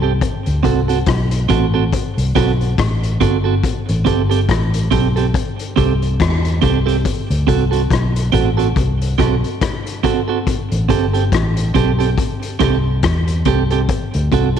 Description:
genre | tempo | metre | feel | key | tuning
roots reggae | 70 BPM | 4/4 | swing 57% on 16ths | A dorian | A4 = 438 Hz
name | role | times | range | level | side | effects
clean electric guitar | accompaniment | 0.0-14.6 s | C4 to A4 | -19 LUFS | right 9 dB | tape echo
vintage muted fingered electric bass | bass | 0.0-14.6 s | G1 to E2 | -17 LUFS | left 1 dB | none
vintage drum kit | drums | 0.2-14.6 s | hi-hat, kick drum, rim click | -20 LUFS | left 4 dB | none
room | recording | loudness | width
light reverb, small room ambience | 1960s-style stereo | -14 LUFS | side -8 dB against mid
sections
0.0-14.6 A section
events
none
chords
0.2 D7 (rootless); 3.6 Am7; 7.0 D7 (rootless); 10.5 Am7; 13.9 D7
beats
| 0.21 1.07 1.92 2.78 | 3.63 4.49 5.34 6.19 | 7.05 7.90 8.76 9.61 | 10.47 11.32 12.18 13.04 | 13.89

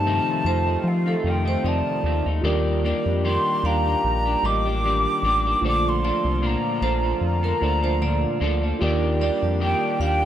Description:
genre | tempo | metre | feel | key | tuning
indie pop, bedroom pop | 76 BPM | 4/4 | swing 55% on 16ths | Bb major | A4 = 439 Hz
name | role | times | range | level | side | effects
hollow concert flute | melody | 0.0-10.3 s | F5 to D6 | -24 LUFS | equal | lush chorus, slapback echo
clean electric guitar | accompaniment | 0.0-10.3 s | F2 to A4 | -28 LUFS | left 4 dB | analog chorus, warbly pitch drift
mellow tine electric piano | accompaniment | 0.0-10.3 s | A3 to D5 | -29 LUFS | right 4 dB | medium stereo tremolo
warm analog pad | sustained chords | 0.0-10.3 s | D3 to G4 | -31 LUFS | left 1 dB | chorus, tremolo
round analog bass | bass | 0.0-10.3 s | A1 to F3 | -24 LUFS | equal | none
vibraphone with medium hard mallets | second line | 0.5-10.3 s | A4 to F5 | -31 LUFS | right 5 dB | wide subtle chorus, slapback echo
room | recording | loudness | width
light reverb | none | -20 LUFS | side -10 dB against mid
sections
0.0-10.3 A section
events
none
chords
0.0 F7; 2.5 Ebmaj7; 5.6 Bbmaj7; 8.8 Ebmaj7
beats
0.07 0.86 1.66 | 2.45 3.25 4.04 4.84 | 5.63 6.43 7.22 8.02 | 8.81 9.61

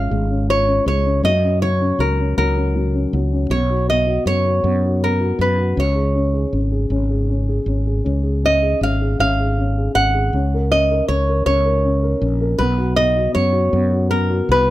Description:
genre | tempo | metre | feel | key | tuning
folk | 53 BPM (dotted quarters) | 6/8 | straight | unclear | A4 = 440 Hz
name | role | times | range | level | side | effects
flamenco guitar | melody | 0.0-14.7 s | A#4 to F#5 | -19 LUFS | equal | none
dark baby grand piano | accompaniment | 0.0-14.7 s | C#3 to A#4 | -22 LUFS | left 2 dB | none
mellow fretless electric bass | bass | 0.0-14.7 s | G#1 to F#2 | -19 LUFS | equal | none
room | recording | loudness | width
little or no reverb | close, detailed microphones | -15 LUFS | side -15 dB against mid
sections
0.0-14.7 A section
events
none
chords
0.0 C#; 1.2 F#; 3.5 Bsus2; 5.8 C#; 10.3 A#m; 12.6 B5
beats
0.11 | 1.25 2.38 | 3.51 4.64 | 5.77 6.91 | 8.05 9.19 | 10.33 11.46 | 12.59 13.73

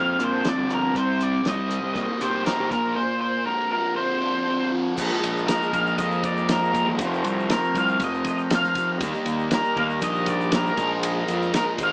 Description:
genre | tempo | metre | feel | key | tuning
psychedelic rock | 119 BPM | 4/4 | straight | unclear | A4 = 441 Hz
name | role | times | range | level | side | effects
octave-fuzz lead guitar | melody | 0.0-11.9 s | Bb4 to F5 | -24 LUFS | equal | distortion
fuzz guitar | riff | 0.0-11.9 s | F2 to Eb4 | -26 LUFS | equal | distortion, phaser
fuzz fingered electric bass | bass | 0.0-11.9 s | F1 to C3 | -28 LUFS | equal | overdrive
cloth-damped thuddy drum kit | drums | 0.2-11.9 s | crash cymbal, hi-hat, kick drum, ride cymbal, snare drum | -28 LUFS | equal | none
tonewheel organ | sustained chords | 5.0-11.9 s | F3 to C5 | -30 LUFS | equal | slow rotary speaker, overdrive
egg shaker | percussion | 5.0-11.9 s | none | -47 LUFS | equal | none
room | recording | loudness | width
moderate studio reverb, RT60 0.5 s | band playing live in one room, small speaker sound | -21 LUFS | side -35 dB against mid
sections
0.0-5.0 A section; 5.0-11.9 B section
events
none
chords
0.0 Bbadd9; 0.9 Cm7; 2.7 Bbadd9; 5.0 Bb7sus4; 7.0 Fsus4; 9.0 Eb; 10.8 Bb7sus4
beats
0.45 | 0.95 1.45 1.96 2.46 | 2.96 3.47 3.97 4.47 | 4.98 5.48 5.99 6.49 | 7.00 7.50 8.00 8.51 | 9.01 9.52 10.02 10.53 | 11.03 11.53

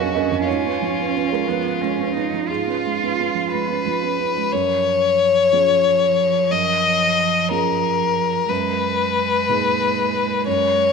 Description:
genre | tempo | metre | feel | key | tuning
neoclassical piano and strings | 60 BPM (dotted quarters) | 6/8 | rubato | unclear | A4 = 442 Hz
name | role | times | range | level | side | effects
rich violin | melody | 0.0-10.9 s | E#4 to D#5 | -18 LUFS | left 6 dB | none
rich cello | second line | 0.0-10.9 s | E#3 to E#4 | -26 LUFS | right 11 dB | none
felt-muted upright piano | accompaniment | 0.0-10.9 s | E#2 to F#5 | -24 LUFS | right 10 dB | none
room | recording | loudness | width
moderate plate reverb, RT60 2.5 s | 1960s-style stereo with parts hard left and right | -17 LUFS | side -5 dB against mid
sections
0.0-4.5 A section; 4.5-10.9 B section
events
none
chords
0.5 C#7/G#; 4.5 C#/F#; 8.5 G#madd9/F#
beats
| 0.47 1.48 | 2.49 3.50 | 4.52 5.52 | 6.52 7.51 | 8.50 9.48 | 10.46

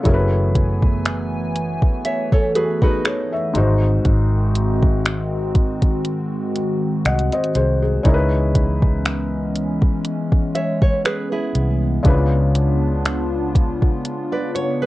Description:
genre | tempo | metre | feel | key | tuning
contemporary R&B | 60 BPM | 4/4 | swing 54% on 16ths | C# minor | A4 = 440 Hz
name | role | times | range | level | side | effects
felt-muted upright piano | accompaniment | 0.0-14.9 s | G#2 to F#5 | -23 LUFS | left 2 dB | none
hollow soft pad | sustained chords | 0.0-14.9 s | C#3 to G#5 | -24 LUFS | equal | chorus
vintage muted fingered electric bass | bass | 0.1-13.8 s | F#1 to C#2 | -20 LUFS | equal | none
smooth R&B drum kit | drums | 0.1-14.8 s | finger snaps, hi-hat, kick drum | -18 LUFS | equal | vintage 12-bit sampler grit
nylon-string guitar | arpeggios | 2.1-3.5, 10.6-14.9 s | D#4 to E5 | -22 LUFS | right 2 dB | none
room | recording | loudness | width
little or no reverb | worn, warbling old tape, cassette tape, warbly pitch drift | -16 LUFS | side -17 dB against mid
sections
0.0-14.9 A section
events
none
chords
0.1 F#m11; 3.6 G#7; 8.1 C#m7; 12.1 C#7b9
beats
| 0.05 1.05 2.05 3.05 | 4.05 5.05 6.05 7.05 | 8.05 9.05 10.05 11.05 | 12.05 13.05 14.05

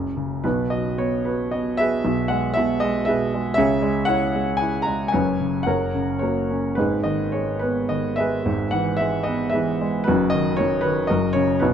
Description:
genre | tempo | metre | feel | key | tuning
classical, lyrical solo piano | 102-122 BPM | 3/4 | rubato | B major | A4 = 435 Hz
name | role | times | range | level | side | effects
warm grand piano | solo | 0.0-11.7 s | F#1 to A#5 | -19 LUFS | equal | none
room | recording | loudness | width
moderate small room reverb, RT60 0.5 s | dark, warm production | -20 LUFS | side -8 dB against mid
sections
0.4-11.7 A section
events
none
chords
0.4 B; 2.0 Emaj9/B; 3.6 C#m; 5.1 F#sus4; 5.7 F#; 6.8 G#m; 8.5 E/G#; 10.1 Badd9/F#; 11.1 F#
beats
| 0.45 1.00 1.53 | 2.05 2.57 3.08 | 3.58 4.09 4.61 | 5.14 5.68 6.22 | 6.79 7.35 7.91 | 8.46 9.00 9.53 | 10.07 10.58 11.10 | 11.62

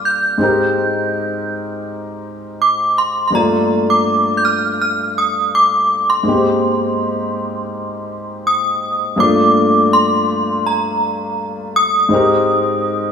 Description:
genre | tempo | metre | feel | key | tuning
R&B | 82 BPM | 4/4 | straight | G phrygian | A4 = 440 Hz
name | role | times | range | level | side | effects
synth chime | melody | 0.0-13.1 s | Bb5 to G6 | -16 LUFS | right 1 dB | ensemble chorus, tremolo, digital delay
warm grand piano | accompaniment | 0.0-13.1 s | G2 to Bb4 | -18 LUFS | left 2 dB | none
room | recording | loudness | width
light reverb, small room ambience | small room reverb | -13 LUFS | side -7 dB against mid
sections
0.0-9.2 A section; 9.2-13.1 B section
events
none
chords
0.4 Abmaj9; 3.3 Gm9; 6.3 Abmaj9; 9.2 Gm9; 12.1 Abmaj9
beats
| 0.41 1.14 1.87 2.60 | 3.33 4.07 4.80 5.53 | 6.26 6.99 7.73 8.46 | 9.19 9.92 10.65 11.38 | 12.12 12.85

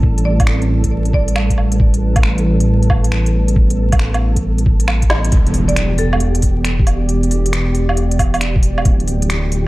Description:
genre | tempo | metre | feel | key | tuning
future garage | 136 BPM | 4/4 | swing 66% on 16ths | A minor | A4 = 441 Hz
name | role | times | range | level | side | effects
warbly tape-like pad | sustained chords | 0.0-9.7 s | A2 to D5 | -22 LUFS | right 2 dB | chorus, built-in reverb, sidechain pumping
dark detuned saw bass | bass | 0.0-9.7 s | D1 to A1 | -16 LUFS | equal | sidechain pumping
electronic kick drum | drums | 0.0-9.0 s | none | -15 LUFS | equal | none
flickering grainy texture | texture | 0.0-9.7 s | G4 to A4 | -31 LUFS | equal | built-in reverb
organic electronic drum kit | drums | 0.2-9.6 s | finger snaps, hi-hat, snare drum, woodblock | -21 LUFS | right 1 dB | overdrive
buzzing marimba with medium hard mallets | melody | 0.3-1.6, 5.7-6.4 s | A4 to D5 | -26 LUFS | right 2 dB | tape echo
impact | sound effects | 5.3-7.1 s | none | -24 LUFS | equal | none
room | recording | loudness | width
light reverb | vinyl crackle | -12 LUFS | side -19 dB against mid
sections
0.0-5.3 A section; 5.3-9.7 B section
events
drum fill 5.1; band accent 5.1; impact 5.3-7.1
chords
0.0 Am9; 5.3 Em7; 8.9 Dm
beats
| 0.03 0.47 0.92 1.36 | 1.80 2.24 2.68 3.12 | 3.56 4.00 4.44 4.89 | 5.33 5.77 6.21 6.65 | 7.09 7.53 7.97 8.41 | 8.86 9.30

